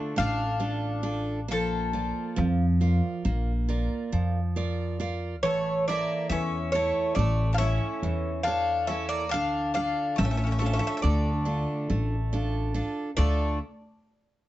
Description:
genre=greek folk, Greek bouzouki band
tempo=138 BPM (eighths)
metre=9/8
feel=straight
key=D harmonic minor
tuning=A4 = 440 Hz
part: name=Greek bouzouki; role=melody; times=0.0-13.6 s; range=A4 to F5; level=-29 LUFS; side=equal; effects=plate reverb
part: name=Greek bouzouki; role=second line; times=0.0-13.6 s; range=F3 to D4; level=-35 LUFS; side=left 4 dB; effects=none
part: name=picked steel-string acoustic guitar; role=accompaniment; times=0.0-13.6 s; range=D3 to E5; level=-31 LUFS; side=right 3 dB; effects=none
part: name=upright bass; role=bass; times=0.2-13.6 s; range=A1 to F2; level=-27 LUFS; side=equal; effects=none
room=light reverb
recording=dark, warm production, nothing above 7.9 kHz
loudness=-25 LUFS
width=side -15 dB against mid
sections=0.0-13.2 A section; 13.2-14.5 B section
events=speeding up 0.0-14.5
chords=0.0 Dm; 1.5 Bb; 5.4 A; 9.3 Dm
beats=0.17 0.61 1.05 | 1.50 1.94 2.38 2.81 3.25 3.69 4.13 4.57 5.00 | 5.44 5.87 6.31 6.74 7.17 7.61 8.04 8.47 8.90 | 9.34 9.77 10.20 10.62 11.05 11.48 11.91 12.34 12.76 | 13.19

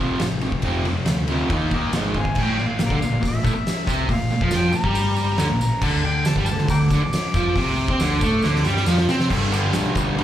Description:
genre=garage rock duo or trio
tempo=139 BPM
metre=4/4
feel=straight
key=unclear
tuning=A4 = 441 Hz
part: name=fuzz guitar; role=riff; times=0.0-10.2 s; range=F2 to Eb4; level=-22 LUFS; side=equal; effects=distortion, slapback echo
part: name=hollow-body short-scale picked electric bass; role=bass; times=0.0-10.2 s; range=F1 to C3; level=-24 LUFS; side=equal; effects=none
part: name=oversized low-tuned drum kit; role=drums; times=0.2-10.2 s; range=crash cymbal, hi-hat, kick drum, ride cymbal, snare drum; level=-24 LUFS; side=equal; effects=none
part: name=tambourine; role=percussion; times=0.2-10.1 s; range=none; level=-38 LUFS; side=right 1 dB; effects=none
part: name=overdriven harmonica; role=melody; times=2.2-8.8 s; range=Bb4 to D6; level=-27 LUFS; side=left 2 dB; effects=slapback echo
room=little or no reverb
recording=live gig heard through the venue's PA, club ambience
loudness=-18 LUFS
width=side -11 dB against mid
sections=0.0-2.4 A section; 2.4-9.3 B section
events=drum fill 8.4-9.3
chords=0.0 F; 1.5 Eb5; 1.9 Ab5; 2.4 Bb5; 5.8 D5; 9.3 G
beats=0.22 | 0.65 1.08 1.51 1.94 | 2.38 2.81 3.24 3.67 | 4.10 4.53 4.97 5.40 | 5.83 6.26 6.70 7.13 | 7.57 8.00 8.43 8.87 | 9.30 9.74 10.17

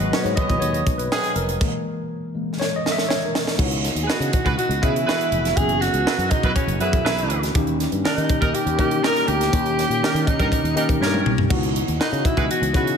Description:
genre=polished 1980s jazz-funk pop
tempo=121 BPM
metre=4/4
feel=straight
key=unclear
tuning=A4 = 440 Hz
part: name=warm horn section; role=second line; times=0.0-12.9 s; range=D#3 to D#5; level=-28 LUFS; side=right 2 dB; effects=slapback echo
part: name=tine electric piano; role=accompaniment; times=0.0-13.0 s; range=E3 to E5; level=-25 LUFS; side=left 3 dB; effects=overdrive, lush chorus, slapback echo
part: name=hollow soft pad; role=sustained chords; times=0.0-13.0 s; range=B2 to D#5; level=-33 LUFS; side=right 1 dB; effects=none
part: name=sustaining fretless electric bass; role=bass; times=0.0-12.9 s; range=E#1 to D#3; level=-25 LUFS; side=equal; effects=none
part: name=crisp fusion drum kit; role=drums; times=0.0-13.0 s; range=crash cymbal, hi-hat, kick drum, snare drum, toms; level=-23 LUFS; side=right 1 dB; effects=none
part: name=mellow soprano saxophone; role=melody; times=4.0-13.0 s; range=C#4 to A#4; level=-24 LUFS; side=right 1 dB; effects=slapback echo
room=moderate lush hall reverb, RT60 2.1 s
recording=big arena sound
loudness=-18 LUFS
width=side -6 dB against mid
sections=0.0-3.6 A section; 3.6-13.0 B section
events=tine electric piano solo 0.0-3.6; stop 1.6-3.6; drum fill 2.6-3.6, 11.0-11.5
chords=0.0 G#m7; 1.6 Emaj7#11; 3.6 C#m11; 5.6 F#7sus4; 7.5 D#7; 11.5 C#m11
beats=0.12 0.62 1.11 | 1.61 2.10 2.60 3.09 | 3.59 4.08 4.58 5.08 | 5.57 6.07 6.56 7.05 | 7.55 8.04 8.54 9.04 | 9.53 10.02 10.52 11.01 | 11.51 12.00 12.50

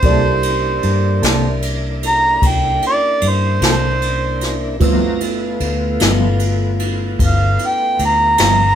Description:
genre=slow blues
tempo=50 BPM (dotted quarters)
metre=12/8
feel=straight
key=unclear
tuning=A4 = 436 Hz
part: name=mellow harmonica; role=melody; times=0.0-8.8 s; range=C5 to Bb5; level=-16 LUFS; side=right 1 dB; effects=overdrive
part: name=mellow electric guitar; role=accompaniment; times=0.0-8.6 s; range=G2 to A4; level=-21 LUFS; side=left 1 dB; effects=tremolo
part: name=tine electric piano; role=accompaniment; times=0.0-8.8 s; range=A3 to E6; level=-24 LUFS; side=right 8 dB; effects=phaser
part: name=tonewheel organ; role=sustained chords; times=0.0-8.8 s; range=F#3 to Bb5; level=-25 LUFS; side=left 2 dB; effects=chorus vibrato, slow rotary speaker
part: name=vintage muted fingered electric bass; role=bass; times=0.0-8.8 s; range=G1 to G2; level=-19 LUFS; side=left 1 dB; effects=none
part: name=jazz brush drum kit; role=drums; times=0.0-8.6 s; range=kick drum, ride cymbal, snare drum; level=-20 LUFS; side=equal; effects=none
room=moderate studio reverb, RT60 0.8 s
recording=band playing live in one room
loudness=-13 LUFS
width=side -9 dB against mid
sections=0.0-8.8 A section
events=harmonica solo 0.0-8.8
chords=0.0 C13; 4.8 G13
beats=| 0.03 1.23 2.42 3.62 | 4.81 6.00 7.19 8.38

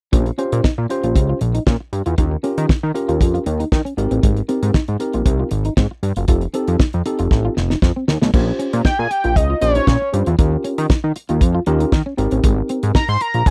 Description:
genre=early-eighties boogie funk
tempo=117 BPM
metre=4/4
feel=straight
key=Bb dorian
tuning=A4 = 440 Hz
part: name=tine electric piano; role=accompaniment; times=0.1-13.0 s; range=C4 to C5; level=-24 LUFS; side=equal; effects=none
part: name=electric guitar at the edge of break-up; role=riff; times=0.1-13.4 s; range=Ab3 to F4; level=-27 LUFS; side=equal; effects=analog chorus
part: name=fat analog bass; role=bass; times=0.1-13.5 s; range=F1 to Eb3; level=-21 LUFS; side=equal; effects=none
part: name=damped 70s drum kit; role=drums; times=0.1-13.5 s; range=crash cymbal, hi-hat, kick drum, snare drum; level=-18 LUFS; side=equal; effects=none
part: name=fat analog lead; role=melody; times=8.9-13.5 s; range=Db5 to C6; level=-21 LUFS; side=equal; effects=slapback echo
room=little or no reverb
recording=dry, close 1970s-style studio recording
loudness=-18 LUFS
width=mono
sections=0.1-8.3 A section; 8.3-13.5 B section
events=drum fill 7.3-8.3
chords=0.1 Bbm69; 2.2 Eb7; 4.0 Abmaj9; 6.3 F9; 8.3 Bbm69; 10.4 Eb7; 12.2 Abmaj9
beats=| 0.13 0.64 1.16 1.67 | 2.18 2.69 3.21 3.72 | 4.23 4.75 5.26 5.77 | 6.28 6.80 7.31 7.82 | 8.34 8.85 9.36 9.87 | 10.39 10.90 11.41 11.92 | 12.44 12.95 13.46

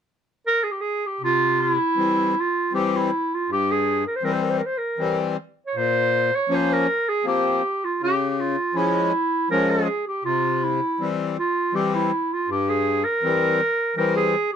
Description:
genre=klezmer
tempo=80 BPM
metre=3/4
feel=straight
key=C phrygian dominant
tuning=A4 = 439 Hz
part: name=clear clarinet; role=melody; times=0.5-14.6 s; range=E4 to Db5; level=-21 LUFS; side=right 2 dB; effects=none
part: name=accordion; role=accompaniment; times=1.2-14.4 s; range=G2 to Db4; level=-23 LUFS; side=left 4 dB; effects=none
room=light reverb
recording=close, detailed microphones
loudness=-20 LUFS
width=side -8 dB against mid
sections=0.0-1.2 A section; 1.2-14.6 B section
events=none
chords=0.0 N.C.; 1.2 C; 5.7 Bbm; 8.0 Db; 10.2 C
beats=0.46 | 1.22 1.97 2.73 | 3.48 4.24 4.99 | 5.74 6.50 7.25 | 8.00 8.75 9.50 | 10.24 10.99 11.74 | 12.49 13.24 13.98

